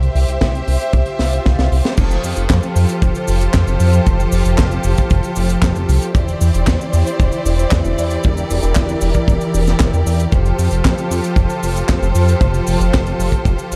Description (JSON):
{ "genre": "italo disco", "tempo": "115 BPM", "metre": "4/4", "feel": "straight", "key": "unclear", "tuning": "A4 = 443 Hz", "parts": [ { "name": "rich symphonic string section", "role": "sustained chords", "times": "0.0-13.8 s", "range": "E3 to E5", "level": "-22 LUFS", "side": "equal", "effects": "none" }, { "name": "chorused synth bass", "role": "bass", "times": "0.0-13.8 s", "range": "E1 to F2", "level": "-18 LUFS", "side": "equal", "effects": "tube saturation" }, { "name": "tight funk drum kit", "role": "drums", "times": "0.0-13.8 s", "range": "cabasa, crash cymbal, handclaps, hi-hat, snare drum", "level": "-26 LUFS", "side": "equal", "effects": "none" }, { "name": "kick drum", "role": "drums", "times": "0.4-13.6 s", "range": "none", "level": "-19 LUFS", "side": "equal", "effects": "none" }, { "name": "swell", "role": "sound effects", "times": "1.2-2.0 s", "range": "none", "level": "-32 LUFS", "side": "equal", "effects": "none" } ], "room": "light reverb", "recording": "dark, warm production", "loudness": "-16 LUFS", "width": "mono", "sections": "0.0-2.0 A section; 2.0-13.8 B section", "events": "swell 1.2-2.0; drum fill 1.2-2.0; band accent 1.8", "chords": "0.0 C; 2.0 Fadd9; 6.2 Cadd9/E; 10.3 Fadd9" }